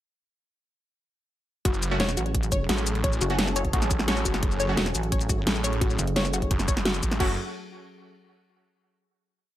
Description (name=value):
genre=dark technical drum and bass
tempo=173 BPM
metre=4/4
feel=straight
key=F# minor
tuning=A4 = 440 Hz
part: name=sweeping resonant pad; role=sustained chords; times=1.7-7.4 s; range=F#3 to A4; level=-34 LUFS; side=equal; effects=chorus, sidechain pumping
part: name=wide unison pluck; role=arpeggios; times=1.7-7.4 s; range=F#4 to C#5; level=-32 LUFS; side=left 2 dB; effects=sidechain pumping, tape echo
part: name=snarling distorted saw bass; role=bass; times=1.7-7.4 s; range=F#1 to A1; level=-28 LUFS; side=equal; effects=distortion, overdrive, sidechain pumping
part: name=dubstep drum kit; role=drums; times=1.7-7.3 s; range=crash cymbal, hi-hat, shaker, snare drum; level=-28 LUFS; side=equal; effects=none
part: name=electronic kick drum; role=drums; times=1.7-7.3 s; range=none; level=-26 LUFS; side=equal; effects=none
part: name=orchestra-hit-like synth stab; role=stabs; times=1.9-4.7, 7.2-7.3 s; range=A3 to F#4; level=-33 LUFS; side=right 1 dB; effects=built-in reverb, tape echo
part: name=pulsing pluck wobble bass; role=bass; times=2.0-6.5 s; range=E1 to A1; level=-28 LUFS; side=equal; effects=chorus, tube saturation
room=digital ambience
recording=none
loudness=-23 LUFS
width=side -13 dB against mid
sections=1.7-7.2 drop; 7.2-8.6 final chord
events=drop 1.7-7.2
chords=1.7 F#m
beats=| 1.65 2.00 2.35 2.69 | 3.04 3.39 3.73 4.08 | 4.43 4.77 5.12 5.47 | 5.81 6.16 6.51 6.86 | 7.20